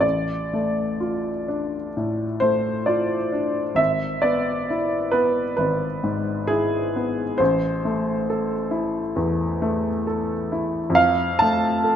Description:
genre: classical, romantic nocturne for solo piano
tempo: 66 BPM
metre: 4/4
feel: rubato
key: unclear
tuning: A4 = 440 Hz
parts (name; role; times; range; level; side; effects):
- warm upright piano; solo; 0.0-12.0 s; G#1 to A5; -20 LUFS; equal; none
room: moderate scoring stage reverb, RT60 1.8 s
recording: none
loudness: -20 LUFS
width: side -9 dB against mid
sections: 0.0-12.0 A section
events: none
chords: 0.0 Dm/A; 3.8 E7/G#; 7.4 Am; 11.0 Dm/F (rootless)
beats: | 0.03 1.00 1.94 2.87 | 3.79 4.69 5.59 6.50 | 7.40 8.28 9.17 10.07 | 10.96 11.86

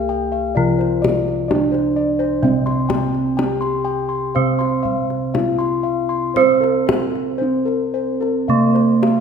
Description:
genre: Javanese gamelan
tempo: 54-64 BPM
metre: 4/4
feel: straight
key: C slendro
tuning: A4 = 440 Hz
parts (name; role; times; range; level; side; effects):
- gamelan-type bronze metallophone; melody; 0.0-9.2 s; Bb3-45c to C5; -21 LUFS; equal; none
- gamelan-type bronze metallophone; accompaniment; 0.0-9.2 s; C3 to C4; -22 LUFS; right 5 dB; none
- gamelan-type bossed gongs; arpeggios; 0.0-9.2 s; Bb4-45c to C6; -23 LUFS; left 5 dB; none
- gamelan-type bossed gongs; bass; 0.0-9.2 s; C2 to C5; -23 LUFS; right 2 dB; none
- kendang; percussion; 0.8-9.2 s; none; -23 LUFS; left 4 dB; none
room: moderate scoring stage reverb, RT60 1.5 s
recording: minimal, uncompressed stereo recording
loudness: -16 LUFS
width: side -6 dB against mid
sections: 0.0-9.2 A section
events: none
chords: none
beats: 0.56 1.50 | 2.44 3.39 4.36 5.35 | 6.37 7.41 8.48

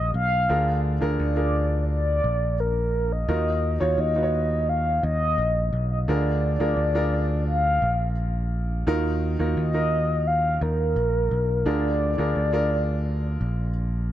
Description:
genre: piano-driven pop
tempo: 86 BPM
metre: 4/4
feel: straight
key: unclear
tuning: A4 = 440 Hz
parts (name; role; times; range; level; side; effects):
- mellow horn-like synth lead; melody; 0.0-13.8 s; A#4 to E#5; -25 LUFS; left 1 dB; chorus, plate reverb
- clear upright piano; accompaniment; 0.0-14.1 s; D3 to C#5; -29 LUFS; right 1 dB; plate reverb
- picked electric bass; bass; 0.0-14.1 s; A#1 to D#2; -24 LUFS; equal; none
room: light reverb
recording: dark, warm production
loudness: -21 LUFS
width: side -12 dB against mid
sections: 0.0-14.1 A section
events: none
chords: 0.5 A#7/D; 3.3 D#madd9; 6.1 A#7/D; 8.9 D#madd9; 11.7 A#7/D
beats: | 0.49 1.19 1.89 2.58 | 3.28 3.98 4.68 5.38 | 6.08 6.77 7.47 8.17 | 8.87 9.57 10.26 10.96 | 11.66 12.36 13.05 13.75

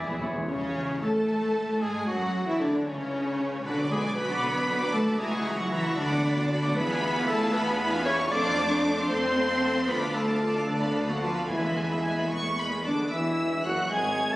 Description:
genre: classical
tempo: 76 BPM (dotted quarters)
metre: 6/8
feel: straight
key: A major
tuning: A4 = 440 Hz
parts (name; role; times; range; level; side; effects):
- warm clarinet; second line; 0.0-14.4 s; C#4 to D5; -31 LUFS; equal; none
- warm oboe; second line; 0.0-0.5, 13.1-14.4 s; C#5 to A5; -36 LUFS; equal; none
- warm symphonic violin section; second line; 0.0-14.4 s; C#4 to D6; -32 LUFS; equal; none
- clear bassoon; accompaniment; 0.0-0.5, 13.1-14.4 s; E3 to A3; -36 LUFS; equal; none
- timpani; percussion; 0.0-0.4, 11.5-12.3 s; E2; -38 LUFS; equal; none
- rich symphonic viola section; accompaniment; 0.1-14.4 s; C#3 to C#5; -33 LUFS; equal; none
- rich studio cello section; bass; 0.1-14.4 s; E2 to D4; -30 LUFS; equal; none
- clear symphonic double bass section; bass; 0.2-14.4 s; E1 to A2; -35 LUFS; right 1 dB; none
- rich chamber violin section; melody; 0.5-14.4 s; C#5 to A6; -33 LUFS; equal; none
- mellow French horn section; sustained chords; 12.8-14.4 s; D3 to G#3; -34 LUFS; left 1 dB; none
- bright silver concert flute; second line; 12.9-14.4 s; D5 to A5; -32 LUFS; equal; none
- mellow trumpet; stabs; 12.9-14.4 s; D4 to A4; -34 LUFS; equal; none
- clear tuba; bass; 13.1-14.4 s; E1 to G#1; -35 LUFS; right 1 dB; none
room: wet concert hall reverb, RT60 1.9 s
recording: recorded on a phone in the room, studio reverb, compression, nothing above 10.3 kHz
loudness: -24 LUFS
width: side -17 dB against mid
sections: 0.5-13.1 A section; 13.1-14.4 B section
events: timpani fill 0.0-0.5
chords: 0.5 A/C#; 2.1 Dadd9; 2.9 N.C.; 3.6 Bm; 5.2 F#7/C#; 6.0 Bm/D; 6.8 E7b9; 8.3 F; 9.9 Dm; 10.7 Bm7b5/D; 11.5 E; 13.1 A/E (rootless)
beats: | 0.47 1.29 | 2.08 2.86 | 3.65 4.43 | 5.20 5.97 | 6.76 7.53 | 8.31 9.09 | 9.88 10.68 | 11.50 12.31 | 13.12 13.92

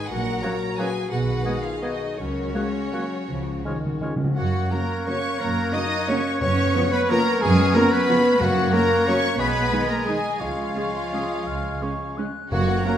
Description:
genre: classical, orchestral ballroom waltz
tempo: 154-196 BPM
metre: 3/4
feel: rubato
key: F# major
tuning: A4 = 439 Hz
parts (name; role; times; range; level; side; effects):
- warm symphonic violin section; melody; 0.0-13.0 s; C#5 to D#6; -30 LUFS; left 3 dB; none
- warm clarinet; second line; 0.0-13.0 s; C#4 to D#5; -30 LUFS; left 2 dB; none
- warm symphonic violin section; second line; 0.0-13.0 s; E#4 to D#5; -32 LUFS; left 1 dB; none
- mellow French horn section; sustained chords; 0.0-13.0 s; D#3 to A#4; -32 LUFS; left 4 dB; none
- warm symphonic cello section; bass; 0.1-13.0 s; A#2 to D#4; -29 LUFS; right 2 dB; none
- warm symphonic double bass section; bass; 0.1-12.8 s; F#1 to F#2; -27 LUFS; right 2 dB; none
- clear oboe; second line; 0.4-13.0 s; C#5 to D#5; -34 LUFS; equal; none
- concert flute; second line; 0.4-13.0 s; C#6 to G#6; -35 LUFS; left 2 dB; none
- dark bassoon; accompaniment; 0.4-13.0 s; G#3 to B3; -30 LUFS; left 1 dB; none
- warm symphonic viola section; accompaniment; 0.4-12.9 s; E#3 to D#4; -32 LUFS; right 1 dB; none
- timpani; percussion; 3.3-4.3, 6.4-13.0 s; F#2 to C#3; -29 LUFS; equal; none
- dark trumpet; stabs; 4.4-13.0 s; E#4 to D#5; -28 LUFS; right 2 dB; none
- dark trombone section; sustained chords; 4.7-13.0 s; C#3 to B3; -32 LUFS; right 2 dB; none
room: wet scoring stage reverb, RT60 1.5 s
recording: none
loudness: -20 LUFS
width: side -10 dB against mid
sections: 0.0-4.4 A section; 4.4-13.0 B section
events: timpani fill 3.3-4.4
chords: 0.1 F#/A#; 1.1 G#m7/B; 2.2 F#/C#; 3.3 C#; 4.4 F#; 6.4 C#7/F#; 8.4 F#; 9.4 G#m/B; 10.4 C#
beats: | 0.10 0.43 0.78 | 1.11 1.45 1.82 | 2.18 2.55 2.93 | 3.29 3.65 4.02 | 4.37 4.72 5.07 | 5.40 5.74 6.08 | 6.41 6.75 7.10 | 7.42 7.75 8.09 | 8.41 8.74 9.08 | 9.39 9.72 10.07 | 10.41 10.76 11.13 | 11.47 11.82 12.18 | 12.52 12.86

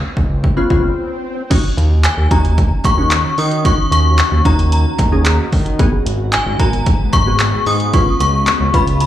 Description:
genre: dance-pop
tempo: 112 BPM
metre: 4/4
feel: straight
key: Eb minor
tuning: A4 = 437 Hz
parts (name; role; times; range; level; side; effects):
- glassy wavetable pluck; accompaniment; 0.0-9.1 s; Cb4 to Cb5; -21 LUFS; left 1 dB; chorus, slapback echo
- fat analog bass; bass; 0.0-9.1 s; Ab1 to Eb3; -16 LUFS; equal; sidechain pumping
- swell; sound effects; 0.1-1.5 s; none; -29 LUFS; left 2 dB; slapback echo
- punchy analog drum machine; drums; 0.2-9.1 s; crash cymbal, handclaps, hi-hat, kick drum; -16 LUFS; equal; none
- glassy FM pad; sustained chords; 2.7-9.1 s; Db3 to Gb4; -25 LUFS; equal; ensemble chorus, built-in reverb, sidechain pumping
- synth chime; melody; 2.0-9.1 s; Ab5 to Eb6; -18 LUFS; left 2 dB; ensemble chorus, phaser, digital delay, slapback echo
- group handclap; percussion; 2.0-8.6 s; none; -32 LUFS; left 3 dB; none
room: little or no reverb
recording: live gig heard through the venue's PA, club reverb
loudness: -12 LUFS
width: side -12 dB against mid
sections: 0.0-1.5 A section; 1.5-9.1 B section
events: swell 0.1-1.5; break 1.0-1.5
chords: 0.0 Db7; 1.5 Ebm7; 5.8 Abm7; 7.9 Db7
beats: 0.44 0.97 | 1.51 2.04 2.58 3.12 | 3.65 4.19 4.72 5.26 | 5.79 6.33 6.87 7.40 | 7.94 8.47 9.01

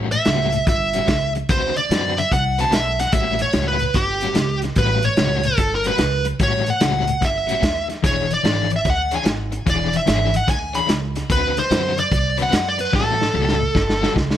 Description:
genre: electric blues shuffle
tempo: 147 BPM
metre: 4/4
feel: swing 65% on 8ths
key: A mixolydian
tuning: A4 = 440 Hz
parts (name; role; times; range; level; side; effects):
- overdriven semi-hollow guitar; riff; 0.0-14.2 s; A2 to C#5; -25 LUFS; left 8 dB; tremolo
- upright bass; bass; 0.0-14.4 s; E1 to F#2; -24 LUFS; right 1 dB; none
- smooth overdriven lead guitar; melody; 0.1-14.1 s; G4 to B5; -20 LUFS; right 1 dB; plate reverb
- vintage drum kit; drums; 0.1-14.4 s; hi-hat, kick drum, snare drum; -22 LUFS; equal; none
room: light reverb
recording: none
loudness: -17 LUFS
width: side -11 dB against mid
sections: 0.0-14.4 A section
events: drum fill 12.9-14.4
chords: 0.0 A13; 1.5 D6; 3.1 A13; 8.0 E6; 11.3 D6; 12.9 A6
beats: 0.27 0.68 1.09 | 1.50 1.91 2.32 2.73 | 3.14 3.55 3.96 4.37 | 4.78 5.18 5.59 6.00 | 6.41 6.82 7.23 7.63 | 8.04 8.45 8.86 9.26 | 9.67 10.08 10.49 10.89 | 11.30 11.71 12.12 12.52 | 12.93 13.34 13.75 14.16

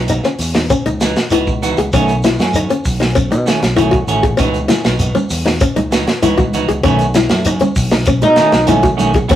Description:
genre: afrobeat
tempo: 98 BPM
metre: 4/4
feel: straight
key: unclear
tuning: A4 = 440 Hz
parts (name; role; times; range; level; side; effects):
- qanun; arpeggios; 0.0-9.4 s; C#4 to G#4; -16 LUFS; left 2 dB; none
- semi-hollow electric guitar; stabs; 0.0-9.4 s; D#3 to F#4; -19 LUFS; right 3 dB; tape echo
- fingered electric bass; bass; 0.0-9.4 s; A1 to B2; -19 LUFS; equal; none
- tight funk drum kit; drums; 0.1-9.4 s; hi-hat, kick drum, snare drum; -17 LUFS; equal; none
- shekere; percussion; 0.1-9.4 s; none; -24 LUFS; right 1 dB; none
- congas; percussion; 4.4-9.4 s; none; -22 LUFS; right 4 dB; none
room: moderate studio reverb, RT60 0.6 s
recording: rough rehearsal-room recording, warm saturation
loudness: -12 LUFS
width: side -12 dB against mid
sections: 0.0-9.4 A section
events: none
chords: 0.0 C#m11; 1.9 B9; 4.4 C#m11; 6.8 B9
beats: 0.09 0.70 1.31 | 1.93 2.54 3.15 3.77 | 4.38 5.00 5.61 6.22 | 6.84 7.46 8.07 8.69 | 9.30

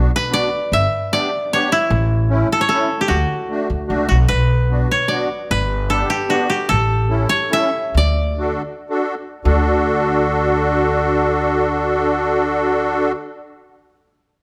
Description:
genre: alpine folk, alpine dance band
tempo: 104-152 BPM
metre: 3/4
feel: straight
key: D major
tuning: A4 = 440 Hz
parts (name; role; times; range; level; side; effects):
- koto; melody; 0.0-9.6 s; E4 to E5; -21 LUFS; equal; none
- musette accordion; accompaniment; 0.0-13.1 s; A3 to A4; -22 LUFS; equal; none
- upright bass; bass; 0.0-13.1 s; G1 to D2; -21 LUFS; equal; none
room: moderate recital hall reverb, RT60 1.5 s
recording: none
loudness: -18 LUFS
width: mono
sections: 0.0-4.3 A section; 4.3-9.4 B section; 9.4-12.9 C section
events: slowing down 6.7-9.4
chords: 0.0 Bm; 0.7 G; 1.9 A; 3.1 D; 4.3 Bm; 5.5 G; 6.7 A; 7.9 D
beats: 0.32 | 0.72 1.11 1.51 | 1.91 2.30 2.70 | 3.09 3.49 3.89 | 4.29 4.70 5.10 | 5.50 5.89 6.29 | 6.69 7.10 7.51 | 7.94 8.40 8.90 | 9.45 10.02 10.59 | 11.16 11.73 12.30

